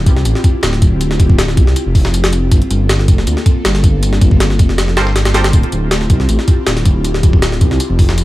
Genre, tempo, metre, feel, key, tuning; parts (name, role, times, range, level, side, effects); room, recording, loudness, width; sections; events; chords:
drum and bass, jungle; 159 BPM; 4/4; straight; D minor; A4 = 440 Hz
airy breathy pad; sustained chords; 0.0-8.2 s; Bb3 to A4; -21 LUFS; left 1 dB; chorus
dark detuned saw bass; bass; 0.0-8.2 s; D1 to D2; -14 LUFS; equal
dusty soul sampler-style drum kit; drums; 0.1-8.2 s; hi-hat, snare drum, tambourine; -28 LUFS; left 2 dB; high-pass filter on snare, small room ambience, high-pass filter on perc, high-pass filter on hats
jungle sampler-style drum kit; drums; 0.1-8.2 s; hi-hat, kick drum, snare drum; -12 LUFS; equal; small room ambience
filtered dub chord stab; stabs; 5.0-5.5 s; F4 to C5; -23 LUFS; right 3 dB; chorus, dub echo
little or no reverb; vinyl crackle; -10 LUFS; side -17 dB against mid
0.0-8.2 A section
0.0 Dm11; 2.5 Gm11; 5.5 Dm11